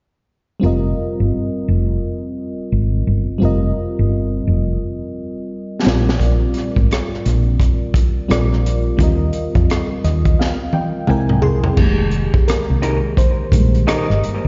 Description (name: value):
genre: R&B, neo-soul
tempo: 86 BPM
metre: 4/4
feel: swing 62% on 16ths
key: F minor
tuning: A4 = 439 Hz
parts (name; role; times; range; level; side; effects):
- mellow FM electric piano; accompaniment; 0.6-14.5 s; Eb3 to C6; -23 LUFS; equal; chorus, slapback echo
- woody fretless electric bass; bass; 0.6-14.5 s; F1 to F2; -19 LUFS; equal; none
- crunchy breakbeat drum kit; drums; 5.9-14.4 s; crash cymbal, hi-hat, kick drum, rim click, snare drum, toms; -20 LUFS; equal; none
- electric guitar through a small old amp; second line; 12.8-14.1 s; Ab3 to Bb4; -26 LUFS; equal; tape echo, slapback echo
room: small room ambience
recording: live gig heard through the venue's PA, recital hall reverb, nothing above 7.5 kHz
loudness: -17 LUFS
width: mono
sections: 0.6-11.8 A section; 11.8-14.5 B section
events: drum fill 4.8-6.2, 10.4-11.8; FM electric piano fill 9.7-11.8; FM electric piano solo 11.8-14.5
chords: 0.6 F9sus4; 5.8 Bbadd9; 9.0 Eb69; 11.1 C7b13; 11.8 Fm11